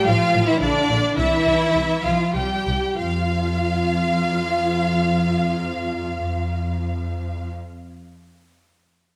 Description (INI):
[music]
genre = quick classical-period movement for string orchestra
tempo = 94-111 BPM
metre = 3/4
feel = straight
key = unclear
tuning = A4 = 436 Hz
[part]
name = warm symphonic violin section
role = melody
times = 0.0-7.5 s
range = D5 to G5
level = -26 LUFS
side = equal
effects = none
[part]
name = rich studio viola section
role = accompaniment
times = 0.0-7.5 s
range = D4 to G4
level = -29 LUFS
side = equal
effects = none
[part]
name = dark symphonic cello section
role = bass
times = 0.0-7.5 s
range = D3 to G3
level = -28 LUFS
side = equal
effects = none
[part]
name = rich symphonic violin section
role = second line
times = 0.1-7.5 s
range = D4 to F5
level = -31 LUFS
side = equal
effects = none
[part]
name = rich symphonic double bass section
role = bass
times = 0.1-7.5 s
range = A1 to F2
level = -28 LUFS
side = equal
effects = none
[sound]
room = moderate scoring stage reverb, RT60 1.8 s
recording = none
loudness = -21 LUFS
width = mono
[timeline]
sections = 0.0-3.0 A section; 3.0-6.7 B section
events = slowing down 0.0-3.0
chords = 0.0 F/A; 0.6 Bb; 1.2 C; 3.0 N.C.